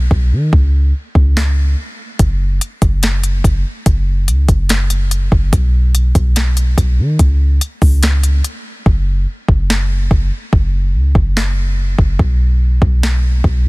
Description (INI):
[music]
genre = hip hop, atmospheric cloud-rap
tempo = 144 BPM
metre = 4/4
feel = half-time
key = unclear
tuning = A4 = 440 Hz
[part]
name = soft 808-style bass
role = bass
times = 0.0-13.7 s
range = F#1 to D#3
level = -13 LUFS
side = equal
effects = none
[part]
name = smooth R&B drum kit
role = drums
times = 0.1-13.5 s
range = hi-hat, kick drum, snare drum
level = -15 LUFS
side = equal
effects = overdrive
[sound]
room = digital ambience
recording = dense, heavily limited modern master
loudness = -12 LUFS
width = side -24 dB against mid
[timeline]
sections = 0.0-13.7 A section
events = break 0.0-2.2; hi-hats muted 8.9-13.7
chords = none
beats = 0.11 | 0.53 0.94 1.36 1.78 | 2.19 2.61 3.03 3.44 | 3.86 4.28 4.69 5.11 | 5.53 5.94 6.36 6.78 | 7.19 7.61 8.03 8.44 | 8.86 9.28 9.69 10.11 | 10.53 10.94 11.36 11.78 | 12.19 12.61 13.03 13.44